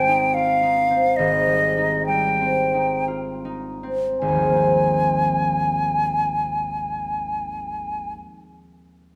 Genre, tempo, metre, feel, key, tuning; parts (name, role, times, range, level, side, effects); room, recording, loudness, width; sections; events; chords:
classical, impressionist duo for flute and harp; 50-76 BPM; 3/4; rubato; Ab major; A4 = 441 Hz
bright silver concert flute; melody; 0.0-8.1 s; Eb5 to Ab5; -23 LUFS; equal
concert harp; accompaniment; 0.0-8.5 s; Ab1 to Ab4; -25 LUFS; equal
wet recital hall reverb, RT60 1.5 s; -21 LUFS; mono
0.0-4.2 A section; 4.2-7.6 B section
slowing down 0.0-4.2
0.0 Abmaj7; 4.2 Ab69